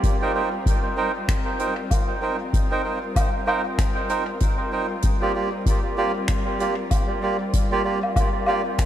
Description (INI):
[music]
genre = ambient dub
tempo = 96 BPM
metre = 4/4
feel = swing 58% on 16ths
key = C minor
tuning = A4 = 440 Hz
[part]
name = muted studio string section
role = sustained chords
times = 0.0-8.9 s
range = G3 to Bb4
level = -30 LUFS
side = left 2 dB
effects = vintage 12-bit sampler grit
[part]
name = electronic kick drum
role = drums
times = 0.0-8.9 s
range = none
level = -22 LUFS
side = left 1 dB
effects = none
[part]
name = soft-mallet drum kit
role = drums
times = 0.0-8.9 s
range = finger snaps, hi-hat, woodblock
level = -30 LUFS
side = left 1 dB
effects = dub echo
[part]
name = melodica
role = stabs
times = 0.2-8.6 s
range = Bb3 to G5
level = -24 LUFS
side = right 3 dB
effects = dub echo
[sound]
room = light reverb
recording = none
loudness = -20 LUFS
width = side -11 dB against mid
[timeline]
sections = 0.0-8.9 A section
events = none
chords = 0.0 Cm7; 5.0 Gm7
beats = | 0.04 0.66 1.28 1.91 | 2.54 3.16 3.79 4.41 | 5.04 5.66 6.29 6.91 | 7.54 8.16 8.79